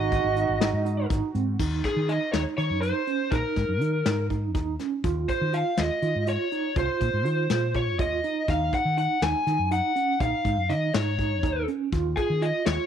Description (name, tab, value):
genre	progressive instrumental, band music in an uneven meter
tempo	244 BPM (eighths)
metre	7/8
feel	straight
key	Eb dorian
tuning	A4 = 440 Hz
part	lead guitar through a small cranked amp	melody	0.0-12.9 s	Ab4 to Ab5	-27 LUFS	left 1 dB	overdrive
part	breathy flugelhorn	second line	0.0-1.1 s	Gb4	-30 LUFS	right 10 dB	tape echo
part	tine electric piano	arpeggios	0.0-12.9 s	C4 to F4	-30 LUFS	right 8 dB	fast tremolo
part	mellow fretless electric bass	bass	0.0-12.8 s	Ab1 to Eb3	-28 LUFS	left 1 dB	none
part	vintage brush drum kit	drums	0.1-12.8 s	crash cymbal, hi-hat, kick drum, snare drum	-30 LUFS	left 3 dB	none
room	light reverb, studio reverb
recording	1960s-style stereo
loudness	-23 LUFS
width	side -8 dB against mid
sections	0.0-1.6 A section; 1.6-12.9 B section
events	none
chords	0.0 Ab7; 1.6 Eb5; 5.0 F5/Eb; 8.5 Ebm7; 11.9 Fm/Eb